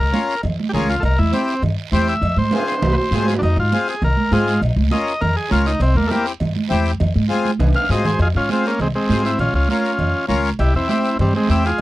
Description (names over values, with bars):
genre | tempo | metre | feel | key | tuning
latin, cumbia | 201 BPM | 4/4 | straight | F harmonic minor | A4 = 441 Hz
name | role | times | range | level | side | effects
combo organ | melody | 0.0-11.8 s | G3 to F5 | -20 LUFS | equal | none
upright bass | bass | 0.0-11.7 s | Bb1 to Ab2 | -19 LUFS | equal | none
accordion | accompaniment | 0.1-11.7 s | C4 to Bb4 | -22 LUFS | left 5 dB | none
congas | percussion | 0.1-11.6 s | none | -22 LUFS | right 4 dB | none
guiro | percussion | 0.1-11.8 s | none | -35 LUFS | right 10 dB | none
cowbell and timbales | percussion | 0.4-11.8 s | none | -28 LUFS | right 3 dB | none
room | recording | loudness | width
light reverb | dry, close 1970s-style studio recording | -16 LUFS | side -17 dB against mid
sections
0.0-8.2 A section; 8.2-11.8 B section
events
transistor combo organ solo 0.0-8.2; drum fill 2.5-3.4, 7.3-8.2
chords
0.0 Bbm; 1.0 C; 2.2 Fm; 4.6 Bbm; 5.8 C; 7.0 Fm; 9.4 Bbm; 10.6 C